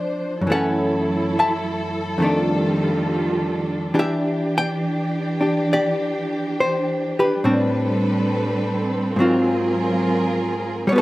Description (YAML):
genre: jazz ballad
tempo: 69 BPM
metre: 4/4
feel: swing 66% on 8ths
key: unclear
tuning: A4 = 440 Hz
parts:
  - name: hollow-body jazz guitar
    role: accompaniment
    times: 0.0-11.0 s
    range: F2 to A5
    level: -20 LUFS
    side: equal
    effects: none
  - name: warm symphonic string section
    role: sustained chords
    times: 0.0-11.0 s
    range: Eb3 to C5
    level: -23 LUFS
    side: right 1 dB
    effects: none
room: wet studio reverb, RT60 0.6 s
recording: rough home demo mix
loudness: -18 LUFS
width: side -17 dB against mid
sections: 0.0-11.0 A section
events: none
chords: 0.4 F#m7; 2.2 F13; 3.9 Em7; 7.4 Am11; 9.2 G#13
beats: | 0.44 1.31 2.19 3.06 | 3.94 4.81 5.68 6.55 | 7.42 8.29 9.16 10.03 | 10.89